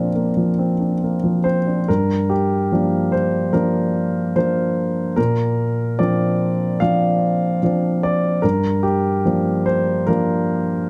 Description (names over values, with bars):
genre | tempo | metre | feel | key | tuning
neoclassical minimalist piano | 73 BPM | 4/4 | rubato | G minor | A4 = 440 Hz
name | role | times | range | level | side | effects
warm grand piano | solo | 0.0-10.9 s | G2 to F5 | -19 LUFS | equal | none
room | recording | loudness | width
light reverb | close, detailed microphones | -19 LUFS | mono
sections
0.0-1.9 A section; 1.9-10.9 B section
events
none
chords
0.0 Bbadd9; 1.9 Gm7; 5.2 Bbadd9; 8.4 Gm7